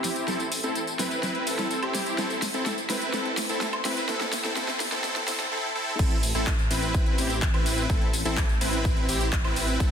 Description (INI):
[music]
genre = EDM, festival progressive house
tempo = 126 BPM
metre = 4/4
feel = straight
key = A minor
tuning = A4 = 439 Hz
[part]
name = supersaw chords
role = riff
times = 0.0-9.9 s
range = C4 to B4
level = -27 LUFS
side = equal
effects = cassette tape, sidechain pumping, low-pass filter, dub echo
[part]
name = wide detuned saw bass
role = bass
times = 0.0-9.9 s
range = A1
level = -34 LUFS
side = equal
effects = chorus, sidechain pumping, high-pass filter
[part]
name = big-room dance drum kit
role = drums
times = 0.0-9.9 s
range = crash cymbal, handclaps, hi-hat, snare drum, tambourine, woodblock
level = -30 LUFS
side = equal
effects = overdrive, small room reverb
[part]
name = electronic kick drum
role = drums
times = 6.0-9.9 s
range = none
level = -25 LUFS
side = equal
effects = overdrive, small room reverb
[sound]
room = moderate lush hall reverb, RT60 1.9 s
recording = dense, heavily limited modern master, high-pass filter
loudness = -24 LUFS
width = side -8 dB against mid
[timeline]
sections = 0.0-6.0 A section; 6.0-9.9 B section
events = build-up 0.0-6.0; drum fill 0.0-5.5; filter sweep on supersaw synth 0.0-6.0; drop 6.0-9.9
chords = 0.0 Am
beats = | 0.28 0.75 1.23 1.71 | 2.18 2.66 3.13 3.61 | 4.09 4.56 5.04 5.52 | 5.99 6.47 6.95 7.42 | 7.90 8.37 8.85 9.33 | 9.80